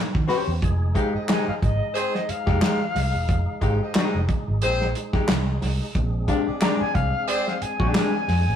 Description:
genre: funk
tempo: 90 BPM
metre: 4/4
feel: swing 56% on 16ths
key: F dorian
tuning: A4 = 440 Hz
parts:
  - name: vintage muted fingered electric bass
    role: bass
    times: 0.1-8.6 s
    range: E1 to Eb3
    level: -24 LUFS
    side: right 1 dB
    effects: none
  - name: warm soul drum kit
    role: drums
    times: 0.1-8.5 s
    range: hi-hat, kick drum, snare drum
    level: -25 LUFS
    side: equal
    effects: none
  - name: archtop guitar, miked and amplified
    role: accompaniment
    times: 0.3-8.1 s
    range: Ab3 to C5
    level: -25 LUFS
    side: left 3 dB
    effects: none
  - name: percussive tonewheel organ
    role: sustained chords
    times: 0.6-8.6 s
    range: Ab3 to Ab4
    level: -35 LUFS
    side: right 1 dB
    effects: slow rotary speaker, overdrive, chorus vibrato
  - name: warm horn section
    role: second line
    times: 1.0-7.5 s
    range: C4 to F5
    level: -28 LUFS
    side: equal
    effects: none
  - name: silver concert flute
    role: melody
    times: 1.3-8.6 s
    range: C5 to Bb5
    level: -28 LUFS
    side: left 3 dB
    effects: none
  - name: group handclap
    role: percussion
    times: 1.3-8.1 s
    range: none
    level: -33 LUFS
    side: left 1 dB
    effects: none
room: moderate stone room reverb, RT60 1.1 s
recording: rough rehearsal-room recording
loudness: -20 LUFS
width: side -9 dB against mid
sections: 0.6-8.6 A section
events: flute solo 0.6-8.6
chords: 0.0 Eb13; 0.6 Fm9; 6.0 Bb13

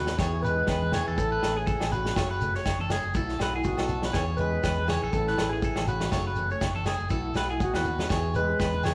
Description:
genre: highlife guitar band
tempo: 121 BPM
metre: 4/4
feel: swing 55% on 16ths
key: E major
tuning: A4 = 439 Hz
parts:
  - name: breathy alto saxophone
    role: melody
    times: 0.0-8.9 s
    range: F#4 to B4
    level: -34 LUFS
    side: equal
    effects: none
  - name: mellow trombone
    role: second line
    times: 0.0-8.9 s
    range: B2 to G#3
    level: -40 LUFS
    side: equal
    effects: none
  - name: fingerpicked old ladder-braced acoustic guitar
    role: accompaniment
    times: 0.0-8.9 s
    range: E3 to A4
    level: -40 LUFS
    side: equal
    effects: none
  - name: electric guitar at the edge of break-up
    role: arpeggios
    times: 0.0-8.9 s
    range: G#4 to C#5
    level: -34 LUFS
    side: equal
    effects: phaser
  - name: fingered electric bass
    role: bass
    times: 0.0-8.9 s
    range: F#1 to E2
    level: -34 LUFS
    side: equal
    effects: none
  - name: warm soul drum kit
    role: drums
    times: 0.1-8.9 s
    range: kick drum, snare drum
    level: -33 LUFS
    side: equal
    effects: none
  - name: agogo bells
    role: percussion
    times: 0.2-8.9 s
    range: none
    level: -39 LUFS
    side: equal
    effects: none
  - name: shekere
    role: percussion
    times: 0.2-8.9 s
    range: none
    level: -41 LUFS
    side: equal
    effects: none
  - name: congas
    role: percussion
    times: 0.4-8.9 s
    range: none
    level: -41 LUFS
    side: equal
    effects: none
room: moderate large studio reverb, RT60 1.1 s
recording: band playing live in one room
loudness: -27 LUFS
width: mono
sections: 0.2-8.9 A section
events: drum fill 0.0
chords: 0.2 E6; 1.2 Aadd9; 2.2 F#m; 3.2 B7sus4; 4.1 E6; 5.1 Aadd9; 6.1 F#m; 7.1 B7sus4; 8.1 E6

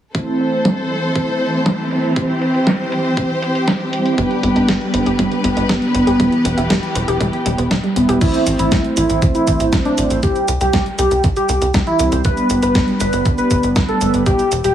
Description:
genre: italo disco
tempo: 119 BPM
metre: 4/4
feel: straight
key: A minor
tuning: A4 = 439 Hz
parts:
  - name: warm studio string section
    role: sustained chords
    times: 0.1-8.2 s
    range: D3 to C5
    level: -19 LUFS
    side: equal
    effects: none
  - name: mellow synth brass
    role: stabs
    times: 0.1-14.4 s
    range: G3 to C5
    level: -19 LUFS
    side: right 1 dB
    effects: chorus
  - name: clean 12-bit digital drum machine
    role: drums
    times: 0.1-14.7 s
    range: cabasa, crash cymbal, hi-hat, snare drum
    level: -22 LUFS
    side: equal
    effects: low-pass filter on hats, low-pass filter on snare, low-pass filter on cymbals, low-pass filter on perc, low-pass filter on room
  - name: electronic kick drum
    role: drums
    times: 0.1-14.4 s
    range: none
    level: -19 LUFS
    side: equal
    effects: high-pass filter on kick, high-pass filter on room
  - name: warbly dusty pluck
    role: arpeggios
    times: 4.2-8.2 s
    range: G3 to B4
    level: -22 LUFS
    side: left 1 dB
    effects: chorus, tape echo
  - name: tight sequencer bass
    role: bass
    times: 4.2-14.7 s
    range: E1 to C2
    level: -22 LUFS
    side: equal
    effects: none
  - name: wide unison lead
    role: melody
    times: 8.2-14.7 s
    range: D4 to B4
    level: -18 LUFS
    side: equal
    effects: vintage 12-bit sampler grit, tape echo
room: moderate plate reverb, RT60 2.0 s, digital ambience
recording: heavily compressed radio sound, multiband compression, small room ambience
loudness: -14 LUFS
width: side -10 dB against mid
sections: 0.1-8.2 A section; 8.2-14.7 B section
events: filter sweep on drum 0.1-8.2; filter sweep on analog polysynth 0.1-8.2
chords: 0.1 Am; 2.2 C; 4.2 G; 6.2 Em; 8.2 Am; 10.2 C; 12.2 G

